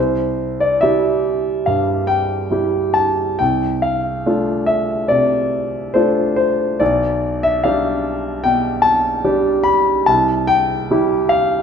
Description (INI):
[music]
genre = classical, romantic character piece for solo piano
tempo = 66-76 BPM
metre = 4/4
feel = rubato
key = C major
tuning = A4 = 435 Hz
[part]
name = clear concert grand piano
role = solo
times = 0.0-11.6 s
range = B1 to B5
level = -15 LUFS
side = equal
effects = none
[sound]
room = moderate recital hall reverb, RT60 1.4 s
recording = minimal, uncompressed stereo recording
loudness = -15 LUFS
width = side -7 dB against mid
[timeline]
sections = 0.0-11.6 A section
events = none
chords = 0.0 C; 6.8 G7/B; 10.1 C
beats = 0.83 1.68 2.51 | 3.40 4.27 5.12 5.96 | 6.80 7.64 8.44 9.24 | 10.09 10.91